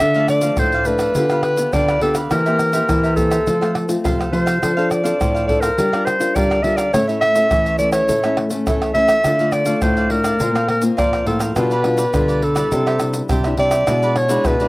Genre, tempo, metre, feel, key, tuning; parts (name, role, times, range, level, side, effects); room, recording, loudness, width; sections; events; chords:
samba and choro; 104 BPM; 4/4; straight; D minor; A4 = 435 Hz
breathy clarinet; melody; 0.0-14.7 s; A4 to E5; -18 LUFS; equal
cavaquinho; accompaniment; 0.0-14.7 s; D4 to F5; -27 LUFS; right 3 dB; slapback echo
nylon-string guitar; accompaniment; 0.0-14.7 s; A2 to Bb4; -22 LUFS; left 2 dB; slapback echo
nylon-string guitar; bass; 0.0-14.7 s; A2 to A3; -22 LUFS; equal
egg shaker, surdo, pandeiro and tamborim; percussion; 0.0-14.7 s; -23 LUFS; equal
little or no reverb; recorded outdoors, with no room sound; -15 LUFS; side -21 dB against mid
0.0-14.7 A section
0.0 Dm; 1.2 G7/D; 2.3 C7/E; 3.5 F; 4.6 Dm7/F; 5.8 Gm7; 6.9 A; 9.2 Dm; 10.4 Bbsus2; 11.6 G7/B; 12.7 Cadd9; 13.9 E7/B